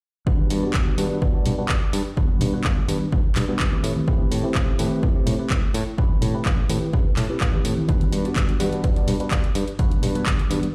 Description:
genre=filtered disco house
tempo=126 BPM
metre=4/4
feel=straight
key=G major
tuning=A4 = 441 Hz
part: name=tine electric piano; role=accompaniment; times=0.3-10.7 s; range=G3 to D5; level=-30 LUFS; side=equal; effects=phaser, sidechain pumping, low-pass filter
part: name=modern bright fingered electric bass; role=bass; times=0.3-10.6 s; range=G1 to A2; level=-29 LUFS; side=equal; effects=sidechain pumping, low-pass filter
part: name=electronic kick drum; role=drums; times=0.3-10.4 s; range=none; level=-24 LUFS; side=equal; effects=none
part: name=tube shaker and congas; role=percussion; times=0.3-10.7 s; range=none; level=-30 LUFS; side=equal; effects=sidechain pumping on perc, low-pass filter on perc
part: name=house drum kit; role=drums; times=0.5-10.7 s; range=handclaps, hi-hat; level=-32 LUFS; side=equal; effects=sidechain pumping on hats
room=digital ambience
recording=played on a big sound system in a bare room, large studio reverb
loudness=-22 LUFS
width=mono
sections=0.3-10.7 A section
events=filter sweep 0.3-10.7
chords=0.3 Gmaj7; 3.8 Am9; 7.9 Gmaj7

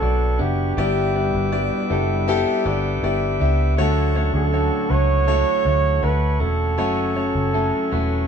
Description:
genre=pop ballad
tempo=80 BPM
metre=4/4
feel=straight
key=unclear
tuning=A4 = 437 Hz
part: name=mellow flugelhorn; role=melody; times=0.0-8.3 s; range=G4 to C#5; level=-24 LUFS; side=right 5 dB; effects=none
part: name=dark French horn section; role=second line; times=0.0-8.3 s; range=A2 to E4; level=-30 LUFS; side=equal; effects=none
part: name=warm concert grand piano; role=accompaniment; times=0.0-8.3 s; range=G2 to F#5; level=-23 LUFS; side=left 3 dB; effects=none
part: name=tonewheel organ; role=sustained chords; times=0.0-8.3 s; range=D4 to D6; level=-30 LUFS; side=right 1 dB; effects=stopped rotary speaker
part: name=direct-recorded clean electric guitar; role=arpeggios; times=0.0-8.3 s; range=B2 to C#5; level=-33 LUFS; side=right 6 dB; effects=none
part: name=vintage muted fingered electric bass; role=bass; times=0.0-8.3 s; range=E1 to D2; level=-21 LUFS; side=equal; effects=none
room=moderate studio reverb, RT60 0.7 s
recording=band playing live in one room, nothing above 10.6 kHz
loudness=-18 LUFS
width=side -7 dB against mid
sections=0.0-8.3 A section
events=none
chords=0.0 Bmadd9; 0.8 G6; 3.8 Dmaj7; 6.8 F#m

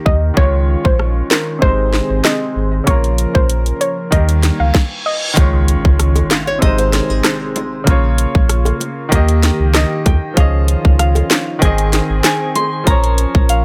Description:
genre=dancehall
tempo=96 BPM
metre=4/4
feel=straight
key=Ab major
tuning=A4 = 440 Hz
part: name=clear baby grand piano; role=accompaniment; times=0.0-13.6 s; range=C3 to G5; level=-23 LUFS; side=equal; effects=none
part: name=warm analog pad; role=sustained chords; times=0.0-13.6 s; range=Db3 to Bb4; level=-27 LUFS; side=equal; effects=chorus
part: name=soft round pluck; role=melody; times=0.1-5.2 s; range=Bb4 to F5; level=-23 LUFS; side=equal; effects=chorus, digital delay
part: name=sub bass with octave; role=bass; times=0.1-13.6 s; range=Ab1 to Eb2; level=-17 LUFS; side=equal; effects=none
part: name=island pop drum kit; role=drums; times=0.1-13.6 s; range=handclaps, hi-hat, kick drum, rim click, snare drum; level=-16 LUFS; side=equal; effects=none
part: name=reverse cymbal and impact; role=sound effects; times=4.6-7.9 s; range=none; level=-27 LUFS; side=equal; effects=none
part: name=bongos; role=percussion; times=6.2-12.7 s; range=none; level=-28 LUFS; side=equal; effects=none
part: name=nylon-string guitar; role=arpeggios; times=6.3-7.8 s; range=Ab4 to F5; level=-24 LUFS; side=equal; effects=digital delay
part: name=soft synth bell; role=second line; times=10.4-13.6 s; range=F5 to C6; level=-23 LUFS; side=equal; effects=chorus, digital delay
room=little or no reverb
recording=none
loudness=-14 LUFS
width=mono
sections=0.0-5.4 A section; 5.4-13.6 B section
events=reverse cymbal 4.6-5.4; stop 4.7-5.4; impact 5.4-7.9; grand piano fill 9.4-10.4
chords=0.4 Dbadd9; 1.6 Ab; 2.9 Bbm; 4.1 Eb; 5.4 Dbadd9; 6.6 Ab; 7.9 Bbm; 9.1 Eb; 10.4 Dbadd9; 11.6 Ab; 12.9 Bbm

